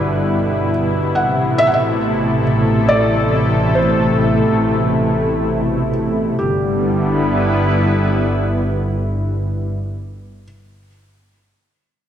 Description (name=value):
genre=ambient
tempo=70 BPM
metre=3/4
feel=straight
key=G major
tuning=A4 = 440 Hz
part: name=felt-muted upright piano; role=melody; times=0.0-10.4 s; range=G4 to F#5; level=-19 LUFS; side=equal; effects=diffuse ambient delay
part: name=warm analog pad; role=sustained chords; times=0.0-9.7 s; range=B2 to B4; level=-17 LUFS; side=equal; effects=chorus, tremolo
part: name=dark symphonic double bass section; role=bass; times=0.0-9.7 s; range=G1 to A1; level=-20 LUFS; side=equal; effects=none
room=wet concert hall reverb, RT60 1.9 s, small room ambience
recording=cassette tape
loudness=-14 LUFS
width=side -9 dB against mid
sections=0.0-6.4 A section; 6.4-9.0 B section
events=none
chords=0.0 G6; 1.2 Amadd9; 6.4 G6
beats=0.32 | 1.18 2.04 2.90 | 3.76 4.63 5.50 | 6.39 7.25 8.12